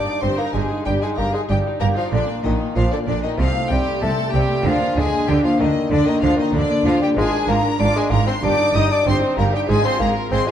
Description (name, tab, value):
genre	classical, baroque-style concerto movement with solo episodes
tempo	95 BPM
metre	4/4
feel	straight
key	Eb major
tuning	A4 = 441 Hz
part	rich chamber violin section	melody	0.0-10.5 s	D5 to Eb6	-27 LUFS	left 4 dB	none
part	warm bassoon	melody	0.0-10.5 s	D3 to Eb4	-23 LUFS	left 1 dB	none
part	rich chamber violin section	second line	0.0-10.5 s	D4 to Eb5	-25 LUFS	left 1 dB	none
part	lute	accompaniment	0.0-10.5 s	G2 to F4	-25 LUFS	left 1 dB	none
part	rich chamber viola section	accompaniment	0.0-10.5 s	A3 to Ab4	-27 LUFS	equal	none
part	clear chamber cello section	bass	0.2-10.4 s	G2 to D3	-24 LUFS	right 2 dB	none
part	rich chamber double bass section	bass	0.2-10.4 s	G1 to D2	-23 LUFS	right 2 dB	none
room	wet recital hall reverb, RT60 1.7 s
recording	dark, warm production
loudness	-16 LUFS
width	side -10 dB against mid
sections	0.0-10.5 A section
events	none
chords	0.0 Eb/G; 2.1 Bb; 3.4 F9/C; 4.7 Bb/D; 7.2 Bb7/Ab; 8.4 Eb/G; 9.7 Fm/Ab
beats	0.22 0.86 1.50 | 2.13 2.76 3.39 4.03 | 4.65 5.28 5.91 6.54 | 7.17 7.80 8.43 9.06 | 9.69 10.32